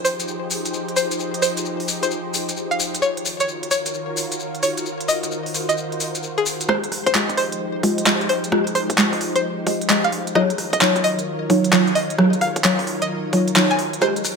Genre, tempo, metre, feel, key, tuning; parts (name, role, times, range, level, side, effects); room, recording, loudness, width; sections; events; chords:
UK garage, two-step garage; 131 BPM; 4/4; swing 64% on 16ths; F phrygian; A4 = 440 Hz
string-like resonator pluck; melody; 0.0-14.2 s; Ab4 to Ab5; -23 LUFS; left 1 dB; chorus, ping-pong delay
soft string machine; sustained chords; 0.0-14.4 s; Eb3 to Db5; -27 LUFS; equal; ensemble chorus, sidechain pumping
garage drum kit; drums; 0.1-14.4 s; handclaps, hi-hat, rim click, shaker; -22 LUFS; equal
deep mellow chord stab; stabs; 6.7-14.1 s; Gb3 to Eb5; -20 LUFS; equal; chorus, phaser
electronic kick drum; drums; 6.7-14.1 s; -30 LUFS; equal
light reverb; high-pass filter; -18 LUFS; side -5 dB against mid
0.0-6.7 A section; 6.7-14.4 B section
build-up 6.7-14.4
0.0 Fm9; 3.0 Ebm9; 6.7 Fm9; 10.4 Ebm9